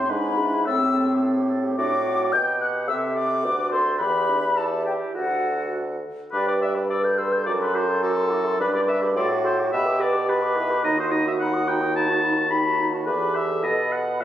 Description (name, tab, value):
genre	quick classical-period movement for wind quintet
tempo	106 BPM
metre	2/4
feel	straight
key	G major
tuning	A4 = 440 Hz
part	concert flute	melody	0.0-14.2 s	F#5 to G6	-27 LUFS	left 3 dB	none
part	clear oboe	second line	0.0-14.2 s	F#4 to B5	-26 LUFS	left 2 dB	none
part	warm French horn	accompaniment	0.0-14.2 s	C4 to B4	-28 LUFS	equal	none
part	warm clarinet	accompaniment	0.0-14.2 s	D4 to D5	-29 LUFS	right 4 dB	none
part	clear bassoon	bass	0.0-14.2 s	D2 to C3	-26 LUFS	equal	none
room	moderate recital hall reverb, RT60 1.8 s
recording	recorded on a phone in the room, club reverb, compression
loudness	-20 LUFS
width	side -11 dB against mid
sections	0.0-6.3 A section; 6.3-14.2 B section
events	none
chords	0.1 E7/G#; 0.7 Am7; 1.8 D/A; 2.3 G/B; 2.9 Am7/C; 3.4 D7; 4.0 Em; 5.2 D; 6.3 G; 6.9 Am7/G; 7.5 D7/F#; 8.6 G; 9.2 D7/A; 9.7 G/B; 10.8 B/D#; 11.9 B7/D#; 13.1 Em; 13.6 B7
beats	0.10 | 0.66 1.22 | 1.77 2.33 | 2.88 3.44 | 4.00 4.57 | 5.16 5.75 | 6.33 6.89 | 7.46 8.02 | 8.59 9.16 | 9.72 10.28 | 10.84 11.39 | 11.94 12.50 | 13.06 13.63 | 14.21